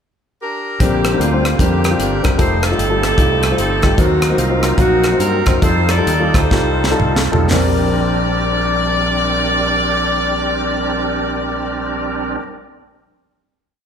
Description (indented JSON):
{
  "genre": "uptempo gospel",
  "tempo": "114-151 BPM",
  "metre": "4/4",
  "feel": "swing 63% on 8ths",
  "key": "Bb major",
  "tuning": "A4 = 440 Hz",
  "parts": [
    { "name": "edgy saxophone section", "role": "melody", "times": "0.4-12.4 s", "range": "Bb3 to D5", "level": "-19 LUFS", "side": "left 1 dB", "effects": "none" },
    { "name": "warm concert grand piano", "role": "accompaniment", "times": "0.8-12.4 s", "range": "Bb1 to C5", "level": "-21 LUFS", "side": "left 4 dB", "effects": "none" },
    { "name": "bright tonewheel organ", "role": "sustained chords", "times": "0.8-12.4 s", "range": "D3 to Bb4", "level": "-22 LUFS", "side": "right 3 dB", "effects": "fast rotary speaker, chorus vibrato" },
    { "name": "modern bright fingered electric bass", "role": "bass", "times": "0.8-12.4 s", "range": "F1 to G2", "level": "-20 LUFS", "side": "right 1 dB", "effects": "none" },
    { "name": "tight funk drum kit", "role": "drums", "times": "0.8-7.7 s", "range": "hi-hat, kick drum, rim click, snare drum, toms", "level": "-17 LUFS", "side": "equal", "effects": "none" }
  ],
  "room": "moderate large studio reverb, RT60 1.3 s",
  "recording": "band playing live in one room",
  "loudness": "-13 LUFS",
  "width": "side -7 dB against mid",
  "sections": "0.0-0.8 pickup bar; 0.8-7.5 breakdown; 7.5-11.7 final chord",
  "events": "slowing down 4.0-7.5; drum fill 6.5-7.5",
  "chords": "0.0 Bb6; 0.8 Bb69; 2.4 F9; 4.0 Ebm6; 5.6 F9; 7.5 Bb69"
}